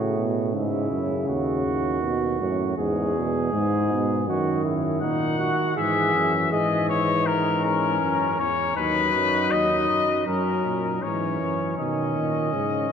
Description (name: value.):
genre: classical, imitative canzona for brass ensemble.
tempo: 80 BPM.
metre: 4/4.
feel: straight.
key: unclear.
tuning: A4 = 440 Hz.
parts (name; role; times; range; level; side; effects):
mellow flugelhorn; second line; 0.0-12.9 s; C#4 to G#4; -28 LUFS; right 3 dB; none.
dark euphonium; accompaniment; 0.0-12.9 s; G#2 to F#3; -27 LUFS; right 1 dB; none.
warm bass trombone; bass; 0.0-12.9 s; D#2 to B2; -28 LUFS; right 1 dB; none.
clear trumpet; melody; 5.0-12.9 s; A#4 to F#5; -24 LUFS; left 6 dB; none.
room: wet cathedral reverb, RT60 5.5 s.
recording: none.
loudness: -21 LUFS.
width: side -7 dB against mid.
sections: 0.0-10.3 A section; 10.3-12.9 B section.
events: none.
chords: 0.0 F#m/A; 1.3 B/D#; 2.8 E; 4.3 F#6; 5.8 C#m; 7.3 F#; 8.8 B/D#; 10.3 F#; 11.8 B.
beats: 0.54 | 1.28 2.03 2.78 3.53 | 4.28 5.03 5.77 6.52 | 7.27 8.02 8.77 9.52 | 10.27 11.03 11.78 12.53.